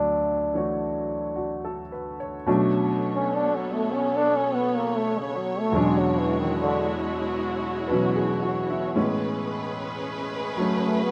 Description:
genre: jazz ballad.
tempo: 74 BPM.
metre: 4/4.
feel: swing 68% on 8ths.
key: B minor.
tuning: A4 = 440 Hz.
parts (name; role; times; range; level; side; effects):
clear trombone; melody; 0.0-11.1 s; C#3 to D4; -27 LUFS; equal; none.
clear upright piano; accompaniment; 0.0-11.1 s; D2 to C#5; -28 LUFS; equal; none.
warm studio string section; sustained chords; 2.5-11.1 s; G#3 to C#5; -32 LUFS; equal; none.
room: light reverb.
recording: none.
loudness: -25 LUFS.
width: mono.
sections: 0.0-2.5 A section; 2.5-11.1 B section.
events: trombone solo 2.5-11.1.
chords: 0.0 D69; 2.5 Bm9; 5.7 E13; 9.0 Amaj9.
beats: 0.81 1.64 | 2.47 3.29 4.11 4.92 | 5.73 6.54 7.35 8.15 | 8.96 9.77 10.58.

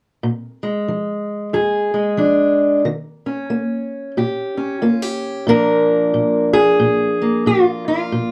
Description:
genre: acoustic country blues, solo or duo.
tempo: 91 BPM.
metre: 4/4.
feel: swing 62% on 8ths.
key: Bb mixolydian.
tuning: A4 = 440 Hz.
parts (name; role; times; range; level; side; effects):
fingerpicked steel-string acoustic guitar; solo; 0.2-8.3 s; F2 to Bb4; -18 LUFS; equal; none.
room: wet small room reverb, RT60 0.5 s.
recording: close, detailed microphones.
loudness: -18 LUFS.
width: mono.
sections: 0.2-5.5 A section; 5.5-8.3 B section.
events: none.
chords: 0.2 Bb7; 2.8 Eb7; 5.5 Bb.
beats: | 0.22 0.88 1.53 2.19 | 2.85 3.50 4.16 4.82 | 5.48 6.13 6.79 7.45 | 8.11.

